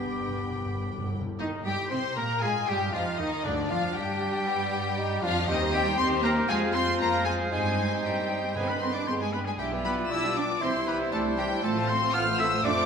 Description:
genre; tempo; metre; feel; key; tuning
quick classical-period movement for symphony orchestra; 117 BPM; 4/4; straight; C minor; A4 = 440 Hz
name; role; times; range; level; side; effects
rich chamber violin section; melody; 0.0-12.9 s; D5 to F6; -32 LUFS; left 5 dB; none
bright clarinet; second line; 0.0-1.1 s; G4; -40 LUFS; left 3 dB; none
clear chamber violin section; second line; 0.0-12.9 s; B3 to G5; -37 LUFS; left 3 dB; none
silver concert flute; second line; 0.0-12.9 s; D5 to F6; -34 LUFS; left 2 dB; none
warm oboe; second line; 0.0-12.9 s; D4 to F5; -36 LUFS; right 1 dB; none
warm bassoon; accompaniment; 0.0-12.9 s; A3 to G4; -34 LUFS; right 1 dB; none
warm chamber viola section; accompaniment; 0.0-12.9 s; D3 to E4; -37 LUFS; right 2 dB; none
mellow French horn section; sustained chords; 0.0-12.9 s; D3 to G4; -35 LUFS; left 4 dB; none
rich chamber cello section; bass; 0.0-12.7 s; G2 to F4; -34 LUFS; right 3 dB; none
rich chamber double bass section; bass; 0.0-12.9 s; G1 to C3; -35 LUFS; right 2 dB; none
timpani; percussion; 0.0-4.2, 8.6-9.3 s; G2; -38 LUFS; equal; none
mellow trumpet; stabs; 1.4-12.9 s; D4 to D5; -35 LUFS; right 2 dB; none
room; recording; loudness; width
wet concert hall reverb, RT60 1.8 s; minimal, uncompressed stereo recording; -25 LUFS; side -6 dB against mid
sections
0.0-1.4 A section; 1.4-12.9 B section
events
timpani fill 0.0-1.4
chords
0.0 G; 1.4 Cm; 3.5 G/D; 5.5 Cm/Eb; 6.5 Fm; 7.5 Cm/G; 8.6 G; 9.6 G7/B; 10.6 C; 11.6 F/A

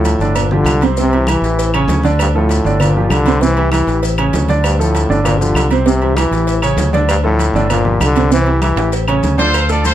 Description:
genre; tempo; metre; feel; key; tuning
latin, salsa; 196 BPM; 4/4; straight; unclear; A4 = 440 Hz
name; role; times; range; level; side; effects
bright trombone; melody; 0.0-8.9 s; G2 to E3; -17 LUFS; left 2 dB; none
warm baby grand piano; accompaniment; 0.0-9.9 s; C3 to A5; -17 LUFS; right 3 dB; none
fingered electric bass; bass; 0.0-9.9 s; G1 to D2; -16 LUFS; left 1 dB; none
maracas; percussion; 0.0-9.9 s; none; -30 LUFS; left 5 dB; none
congas; percussion; 0.1-9.9 s; none; -23 LUFS; left 1 dB; none
cowbell; percussion; 0.1-9.9 s; none; -27 LUFS; right 1 dB; none
timbales and agogo bells; percussion; 0.1-9.9 s; none; -24 LUFS; right 8 dB; none
claves; percussion; 0.4-9.7 s; none; -27 LUFS; left 3 dB; none
bright trumpet section; melody; 9.4-9.9 s; F4 to D5; -15 LUFS; equal; none
room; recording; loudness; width
little or no reverb; close, detailed microphones; -11 LUFS; side -12 dB against mid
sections
0.0-9.5 A section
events
drum fill 8.8-9.5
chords
0.4 G5; 1.0 C; 1.6 A7; 2.2 Dm; 2.8 Gm7; 3.4 C; 4.0 A7; 4.6 Dm; 5.3 G5; 5.9 C; 6.5 A7; 7.1 Dm; 7.7 Gm7; 8.3 C; 8.9 A7

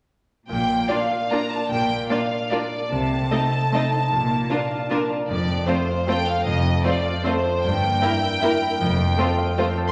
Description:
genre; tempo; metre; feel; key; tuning
classical; 152 BPM; 3/4; uneven beats, rubato; Bb major; A4 = 441 Hz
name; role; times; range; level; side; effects
warm studio violin section; melody; 0.5-9.9 s; C5 to C6; -27 LUFS; equal; none
concert harp; arpeggios; 0.5-9.9 s; F2 to F5; -27 LUFS; equal; none
warm studio cello section; bass; 0.5-9.1 s; F2 to C3; -32 LUFS; equal; none
warm studio double bass section; bass; 0.5-9.1 s; F1 to C2; -32 LUFS; equal; none
warm studio violin section; second line; 0.9-9.7 s; Eb4 to Eb5; -31 LUFS; equal; none
warm studio viola section; accompaniment; 0.9-9.7 s; A3 to E4; -30 LUFS; equal; none
room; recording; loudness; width
wet recital hall reverb, RT60 1.4 s; none; -22 LUFS; mono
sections
0.5-9.9 A section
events
none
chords
0.5 Bb; 2.9 Adim/C; 4.1 Bb; 5.3 F; 7.6 Edim/G; 8.8 F

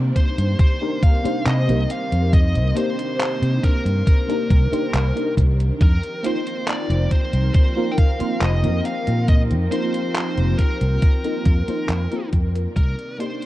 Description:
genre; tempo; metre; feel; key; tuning
vaporwave; 69 BPM; 4/4; straight; C minor; A4 = 439 Hz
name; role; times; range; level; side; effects
FM electric piano with soft pad layer; accompaniment; 0.0-13.5 s; Bb3 to C5; -25 LUFS; equal; tremolo, ensemble chorus
dark studio string section; sustained chords; 0.0-13.5 s; C3 to D5; -32 LUFS; equal; none
fingered electric bass; bass; 0.0-12.9 s; F1 to C3; -19 LUFS; equal; none
bluesy overdriven lead guitar; melody; 0.2-13.5 s; Bb4 to G5; -28 LUFS; left 1 dB; distortion, vintage 12-bit sampler grit, tape echo
detuned 8-bit digital drum machine; drums; 0.2-13.5 s; handclaps, hi-hat; -29 LUFS; equal; overdrive
electronic kick drum; drums; 0.2-12.9 s; none; -16 LUFS; equal; none
room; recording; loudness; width
light reverb; dark, warm production, cassette tape; -17 LUFS; side -16 dB against mid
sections
0.0-13.5 A section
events
fade-out 10.4-13.5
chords
0.0 Cm9; 5.8 F7sus4; 12.8 Cm9

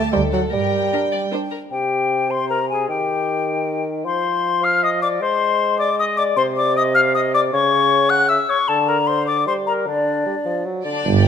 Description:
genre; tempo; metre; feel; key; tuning
cinematic; 154 BPM; 3/4; straight; C minor; A4 = 440 Hz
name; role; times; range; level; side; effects
warm studio violin section; melody; 0.0-1.6, 10.9-11.3 s; D4 to D5; -28 LUFS; left 6 dB; none
rich studio violin section; second line; 0.0-1.3, 10.8-11.3 s; D5 to A5; -27 LUFS; left 3 dB; none
mellow bassoon; accompaniment; 0.0-11.0 s; C3 to Ab3; -22 LUFS; right 2 dB; none
rich studio viola section; accompaniment; 0.0-1.6 s; D4 to C5; -29 LUFS; right 2 dB; none
dark studio double bass section; bass; 0.0-0.8, 11.1-11.3 s; D2 to G2; -20 LUFS; right 5 dB; none
warm studio cello section; bass; 0.0-1.3, 11.0-11.3 s; F#3 to G4; -27 LUFS; right 6 dB; none
hollow concert flute; second line; 1.7-10.6 s; D5 to F#6; -19 LUFS; left 5 dB; none
mellow clarinet; second line; 1.7-10.6 s; D4 to F#5; -23 LUFS; left 4 dB; none
clear tuba; bass; 11.0-11.3 s; G1; -18 LUFS; right 5 dB; none
room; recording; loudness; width
moderate scoring stage reverb, RT60 1.6 s; close, detailed microphones; -17 LUFS; side -8 dB against mid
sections
0.0-1.7 A section; 1.7-11.1 B section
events
none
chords
0.1 D7b9; 0.5 Gm; 1.7 N.C.; 10.7 D/F#

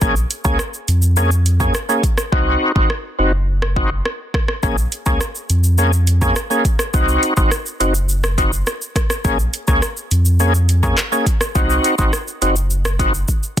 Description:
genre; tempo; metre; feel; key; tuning
dancehall; 104 BPM; 4/4; straight; Bb minor; A4 = 440 Hz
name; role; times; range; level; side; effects
overdriven tonewheel organ; accompaniment; 0.0-13.1 s; Bb3 to Ab4; -19 LUFS; equal; chorus vibrato, slow rotary speaker
warm sub bass; bass; 0.0-13.2 s; Gb1 to F2; -16 LUFS; equal; none
afro-pop drum kit; drums; 0.0-13.6 s; handclaps, hi-hat, kick drum, rim click, shaker; -19 LUFS; equal; overdrive, soft clipping on snare
room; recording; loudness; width
little or no reverb; dense, heavily limited modern master; -15 LUFS; side -10 dB against mid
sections
0.0-13.6 A section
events
hi-hats muted 2.3-4.6; drum fill 13.3-13.6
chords
0.0 Bbm7; 2.3 Cdim; 4.6 Bbm7; 6.9 Cdim; 9.2 Bbm7; 11.6 Cdim

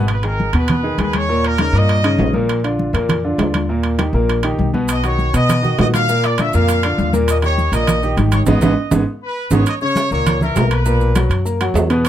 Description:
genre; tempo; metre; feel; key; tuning
latin, salsa; 201 BPM; 4/4; straight; G# minor; A4 = 440 Hz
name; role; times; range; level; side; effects
clear concert grand piano; accompaniment; 0.0-12.1 s; A#2 to A#5; -19 LUFS; equal; none
upright bass; bass; 0.0-12.1 s; G#1 to B2; -18 LUFS; equal; none
brilliant trumpet section; melody; 0.1-2.4, 4.9-12.1 s; A#4 to E#5; -20 LUFS; equal; none
congas; percussion; 0.1-12.1 s; none; -21 LUFS; left 1 dB; none
timbales; percussion; 0.1-12.1 s; none; -22 LUFS; right 5 dB; none
maracas; percussion; 4.9-12.1 s; none; -32 LUFS; right 6 dB; none
room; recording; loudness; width
light reverb; close, detailed microphones; -14 LUFS; side -11 dB against mid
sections
0.1-9.7 A section; 9.7-12.1 B section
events
drum fill 8.5-9.7; band accent 8.5-9.7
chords
0.1 G#m; 1.3 D#7; 2.5 A#; 3.7 D#; 4.9 B; 6.1 A#; 7.3 D#; 8.5 G#m; 9.7 Bmaj7sus2; 10.9 B5

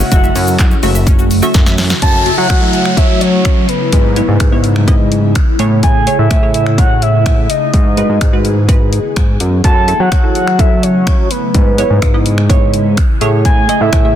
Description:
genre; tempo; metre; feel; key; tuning
dance-pop; 126 BPM; 4/4; straight; F# dorian; A4 = 437 Hz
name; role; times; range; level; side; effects
soft octave-layered synth lead; melody; 0.0-14.2 s; B4 to A5; -17 LUFS; equal; chorus, phaser, tape echo
ethereal airy pad; sustained chords; 0.0-14.2 s; C#3 to G#4; -20 LUFS; left 1 dB; ensemble chorus, built-in reverb, phaser, sidechain pumping
analog pluck; arpeggios; 0.0-2.0 s; C#4 to E5; -24 LUFS; left 3 dB; chorus, sidechain pumping, tape echo
fat analog bass; bass; 0.0-14.2 s; F#1 to F#3; -14 LUFS; equal; sidechain pumping
house drum kit; drums; 0.0-14.0 s; finger snaps, handclaps, hi-hat, kick drum, shaker, snare drum; -12 LUFS; equal; soft clipping on snare
wavetable chord stab; accompaniment; 0.1-14.2 s; F#3 to E5; -19 LUFS; right 2 dB; sidechain pumping
downlifter; sound effects; 2.0-5.8 s; none; -22 LUFS; equal; none
room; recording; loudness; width
little or no reverb; dense, heavily limited modern master; -9 LUFS; side -10 dB against mid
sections
0.0-2.0 A section; 2.0-14.2 B section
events
drum fill 1.5-2.0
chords
0.1 F#m7; 3.9 C#m7/G#; 5.6 Amaj7; 7.7 G#m7; 9.6 F#m7; 11.5 C#m7/G#; 13.2 Amaj7

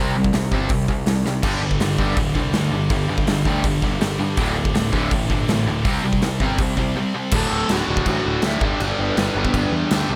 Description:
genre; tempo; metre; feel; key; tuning
punk rock; 163 BPM; 4/4; straight; unclear; A4 = 440 Hz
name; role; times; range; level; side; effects
distorted electric guitar; riff; 0.0-10.2 s; D2 to C4; -27 LUFS; equal; distortion
tight distorted guitar; riff; 0.0-7.3 s; D2 to C4; -29 LUFS; equal; distortion
fuzz picked electric bass; bass; 0.0-10.2 s; D1 to G2; -26 LUFS; equal; overdrive
big rock drum kit; drums; 0.2-10.0 s; crash cymbal, hi-hat, kick drum, snare drum; -26 LUFS; equal; none
high-gain distorted guitar; riff; 1.4-10.1 s; D2 to C4; -29 LUFS; equal; distortion
lead guitar through a small cranked amp; melody; 7.3-9.7 s; B3 to A5; -28 LUFS; equal; overdrive, digital delay
room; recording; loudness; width
little or no reverb; none; -20 LUFS; mono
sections
0.0-7.3 A section; 7.3-10.2 B section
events
drum fill 1.3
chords
0.0 C5; 1.4 G5; 4.4 D5; 5.9 C5; 7.3 D; 8.6 G

